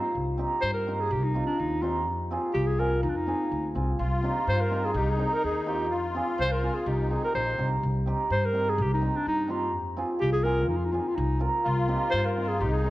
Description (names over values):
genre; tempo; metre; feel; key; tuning
klezmer; 125 BPM; 2/4; straight; C minor; A4 = 440 Hz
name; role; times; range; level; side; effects
musette accordion; second line; 0.0-0.1, 4.0-7.5, 11.6-12.9 s; C4 to F4; -32 LUFS; left 2 dB; none
cimbalom; accompaniment; 0.0-12.9 s; C4 to Bb4; -30 LUFS; right 1 dB; none
upright bass; bass; 0.1-12.9 s; Bb1 to G2; -29 LUFS; equal; none
warm clarinet; melody; 0.6-12.9 s; D4 to C5; -29 LUFS; equal; none
room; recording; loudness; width
moderate recital hall reverb, RT60 1.5 s; worn, warbling old tape, cassette tape, warbly pitch drift; -24 LUFS; side -16 dB against mid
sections
0.1-7.8 A section; 7.8-12.9 A section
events
none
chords
0.1 Cm; 2.1 Fm; 4.0 Cm; 5.9 Fm; 6.9 Cm; 9.7 Fm; 11.6 Cm